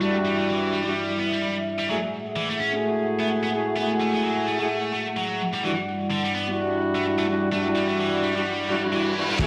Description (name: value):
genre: breakbeat, breaks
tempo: 128 BPM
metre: 4/4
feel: swing 57% on 16ths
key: unclear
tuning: A4 = 443 Hz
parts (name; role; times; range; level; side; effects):
- dark analog pad; sustained chords; 0.0-9.5 s; G3 to F#5; -30 LUFS; equal; chorus, sidechain pumping
- scooped high-gain guitar; riff; 0.0-9.5 s; D3 to C#4; -30 LUFS; equal; distortion, low-pass filter, tape echo
- mellow brass ensemble; stabs; 0.0-9.5 s; G3 to G#4; -28 LUFS; equal; vintage 12-bit sampler grit, tape echo
- reverse cymbal and downlifter; sound effects; 8.6-9.5 s; none; -31 LUFS; equal; none
- crunchy breakbeat drum kit; drums; 9.4-9.5 s; crash cymbal, kick drum, ride cymbal; -24 LUFS; equal; none
room: wet digital room reverb, RT60 1.1 s, studio reverb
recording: played on a big sound system in a bare room, large studio reverb, vinyl crackle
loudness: -25 LUFS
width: mono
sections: 0.0-9.4 A section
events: reverse cymbal 8.6-9.4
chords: 0.0 Em9; 1.9 F#m9; 5.4 Em9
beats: | 0.02 0.49 0.96 1.43 | 1.89 2.36 2.83 3.30 | 3.77 4.24 4.71 5.17 | 5.64 6.11 6.58 7.05 | 7.52 7.99 8.46 8.93 | 9.39